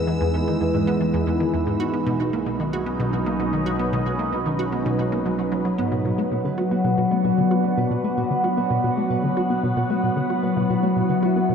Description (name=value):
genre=ambient, sequencer-driven space music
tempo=113 BPM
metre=4/4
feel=straight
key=B minor from 6.0 s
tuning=A4 = 440 Hz
part: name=evolving wavetable pad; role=sustained chords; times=0.0-11.5 s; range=E3 to E6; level=-23 LUFS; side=left 1 dB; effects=phaser, built-in reverb
part: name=concert harp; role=arpeggios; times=0.0-11.5 s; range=G#2 to B4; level=-28 LUFS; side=right 1 dB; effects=auto-pan, tape echo
part: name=analog drone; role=bass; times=0.0-6.0 s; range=B1 to E2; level=-34 LUFS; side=equal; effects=chorus
part: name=resonant blip pluck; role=riff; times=0.1-11.5 s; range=E2 to F#4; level=-25 LUFS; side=right 1 dB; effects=chorus, tape echo
part: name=wind-like tuned noise texture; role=texture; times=6.5-11.5 s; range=C#5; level=-38 LUFS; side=left 2 dB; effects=built-in reverb
room=wet huge ambient reverb, RT60 7.9 s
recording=dreamy mix soaked in reverb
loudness=-20 LUFS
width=side -6 dB against mid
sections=0.0-6.0 A section; 6.0-11.5 B section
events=filter sweep on synth arpeggio sound 6.0-11.5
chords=0.0 E; 1.8 Badd9; 6.0 Bm